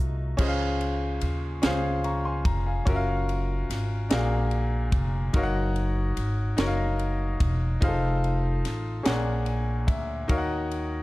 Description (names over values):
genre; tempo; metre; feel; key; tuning
slow gospel; 48 BPM (dotted quarters); 6/8; straight; unclear; A4 = 441 Hz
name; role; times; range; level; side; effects
clear baby grand piano; accompaniment; 0.0-11.0 s; Bb2 to Db6; -29 LUFS; left 1 dB; none
upright bass; bass; 0.0-11.0 s; E1 to Eb2; -27 LUFS; equal; none
crisp fusion drum kit; drums; 0.4-10.9 s; crash cymbal, kick drum, ride cymbal, snare drum; -27 LUFS; equal; none
room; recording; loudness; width
small room ambience; dark, warm production; -24 LUFS; side -19 dB against mid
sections
0.4-11.0 A section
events
grand piano fill 9.1-10.3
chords
0.4 Dbmaj7; 2.9 Gbmaj7; 4.1 Bb7b13; 5.3 Ebm7/Gb; 7.8 F7; 9.1 Bb7alt; 10.3 Ebm7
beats
| 0.39 1.63 | 2.87 4.11 | 5.34 6.58 | 7.82 9.06 | 10.30